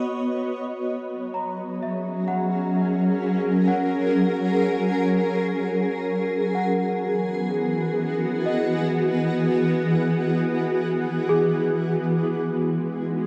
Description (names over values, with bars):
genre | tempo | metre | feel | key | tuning
ambient | 64 BPM | 3/4 | straight | unclear | A4 = 440 Hz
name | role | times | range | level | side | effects
granular cloud pad | sustained chords | 0.0-13.3 s | E3 to D#5 | -24 LUFS | equal | built-in reverb, shimmer reverb
worn celesta | arpeggios | 0.0-13.3 s | G#4 to B5 | -33 LUFS | equal | tape echo, shimmer reverb
room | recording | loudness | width
wet huge ambient reverb, RT60 8.4 s | dark, warm production | -23 LUFS | mono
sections
0.0-13.3 A section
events
fade-in on celesta 0.0-13.3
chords
0.0 Bmaj9; 0.9 F#7; 6.5 Emaj7; 12.2 G#m7